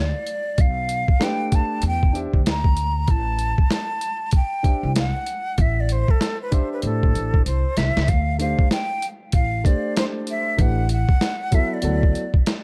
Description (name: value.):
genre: hip hop, jazz-hop.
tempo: 96 BPM.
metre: 4/4.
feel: swing 61% on 16ths.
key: A dorian.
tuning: A4 = 443 Hz.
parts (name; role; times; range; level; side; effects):
breathy jazz flute; melody; 0.0-12.3 s; A4 to Bb5; -28 LUFS; equal; analog delay.
upright bass; bass; 0.0-12.1 s; A1 to A2; -25 LUFS; equal; none.
boom bap sampler-style drum kit; drums; 0.3-12.6 s; hi-hat, kick drum, snare drum; -22 LUFS; equal; none.
dark baby grand piano; accompaniment; 1.2-12.2 s; F#3 to E5; -30 LUFS; equal; none.
room: little or no reverb.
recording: dark, warm production.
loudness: -21 LUFS.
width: mono.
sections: 0.0-8.1 A section; 8.1-12.6 B section.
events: drum fill 7.5-8.1.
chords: 0.0 N.C.; 0.6 Bm7b5; 1.8 C9; 3.1 Am7; 8.1 D5; 10.6 A5; 11.8 D69.